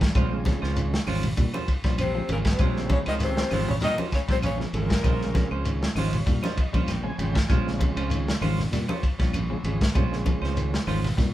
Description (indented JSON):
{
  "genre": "afrobeat",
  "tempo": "98 BPM",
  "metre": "4/4",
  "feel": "swing 54% on 16ths",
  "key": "Bb dorian",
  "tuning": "A4 = 440 Hz",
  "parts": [
    { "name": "combo organ", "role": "accompaniment", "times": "0.0-10.8 s", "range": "Db3 to Ab5", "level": "-33 LUFS", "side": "right 2 dB", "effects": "none" },
    { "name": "electric guitar at the edge of break-up", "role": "arpeggios", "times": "0.0-11.3 s", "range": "Eb3 to G3", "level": "-34 LUFS", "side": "left 4 dB", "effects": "spring reverb, tape echo" },
    { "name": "fingered electric bass", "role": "bass", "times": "0.0-11.3 s", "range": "Ab1 to Bb2", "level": "-29 LUFS", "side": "equal", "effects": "none" },
    { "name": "crunchy breakbeat drum kit", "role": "drums", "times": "0.0-11.3 s", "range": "hi-hat, kick drum, ride cymbal, snare drum", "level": "-26 LUFS", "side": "equal", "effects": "none" },
    { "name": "clean electric guitar", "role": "stabs", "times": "0.2-11.1 s", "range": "Ab3 to C5", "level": "-33 LUFS", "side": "right 4 dB", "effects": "none" },
    { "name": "claves", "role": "percussion", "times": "0.2-11.0 s", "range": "none", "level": "-41 LUFS", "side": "left 2 dB", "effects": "none" },
    { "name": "congas", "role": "percussion", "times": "0.2-11.3 s", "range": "none", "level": "-31 LUFS", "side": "right 2 dB", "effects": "none" },
    { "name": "shekere", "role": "percussion", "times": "0.2-11.3 s", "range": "none", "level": "-32 LUFS", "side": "equal", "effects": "none" },
    { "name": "breathy alto saxophone", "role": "melody", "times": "2.0-5.6 s", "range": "Bb4 to Eb5", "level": "-30 LUFS", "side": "left 2 dB", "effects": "none" },
    { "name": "breathy tenor saxophone", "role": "second line", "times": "2.0-5.6 s", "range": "Bb3 to Eb4", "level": "-38 LUFS", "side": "right 1 dB", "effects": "none" },
    { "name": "raspy baritone saxophone", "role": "second line", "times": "2.0-5.6 s", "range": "Bb2 to Eb3", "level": "-36 LUFS", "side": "left 1 dB", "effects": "none" }
  ],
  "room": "moderate studio reverb, RT60 0.5 s",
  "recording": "band playing live in one room",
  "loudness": "-22 LUFS",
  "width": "side -14 dB against mid",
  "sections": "0.0-11.3 A section",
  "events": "transistor combo organ fill 5.7-7.5",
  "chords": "0.0 Bbm9",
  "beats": "| 0.15 0.76 1.37 1.98 | 2.60 3.21 3.82 4.43 | 5.04 5.66 6.27 6.88 | 7.50 8.11 8.72 9.33 | 9.95 10.56 11.17"
}